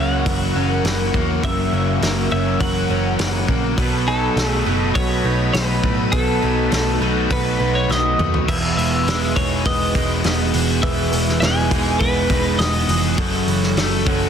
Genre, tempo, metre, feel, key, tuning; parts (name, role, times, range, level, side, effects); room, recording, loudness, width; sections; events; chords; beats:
rock, shoegaze and dream pop; 102 BPM; 4/4; straight; E major; A4 = 440 Hz
twelve-string electric guitar; melody; 0.0-13.0 s; A4 to G#5; -24 LUFS; left 1 dB; spring reverb, digital delay
ensemble organ-string; sustained chords; 0.0-8.5 s; A4 to D#6; -29 LUFS; left 1 dB; phaser, ensemble chorus
picked twelve-string acoustic guitar; arpeggios; 0.0-14.3 s; F#4 to B4; -29 LUFS; right 8 dB; wide subtle chorus, digital delay
biting overdriven guitar; riff; 0.0-14.3 s; E2 to G#4; -25 LUFS; left 12 dB; lush chorus
clean electric guitar; riff; 0.0-14.3 s; F#2 to D#4; -25 LUFS; right 12 dB; reverse reverb
crunchy overdriven guitar; riff; 0.0-14.3 s; E2 to B3; -25 LUFS; equal
vintage muted picked electric bass; bass; 0.0-14.3 s; E1 to A2; -23 LUFS; equal
loose indie drum kit; drums; 0.3-14.2 s; crash cymbal, hi-hat, kick drum, snare drum, toms; -23 LUFS; equal
light reverb, studio reverb; dense, heavily limited modern master; -16 LUFS; side -8 dB against mid
0.0-8.5 A section; 8.5-14.3 B section
drum fill 7.9-8.5
0.0 F#7; 3.8 B7; 8.5 Emaj7; 13.2 F#m7
0.26 0.85 | 1.44 2.03 2.61 3.20 | 3.79 4.38 4.96 5.55 | 6.14 6.72 7.31 7.90 | 8.49 9.07 9.66 10.25 | 10.84 11.42 12.01 12.60 | 13.19 13.78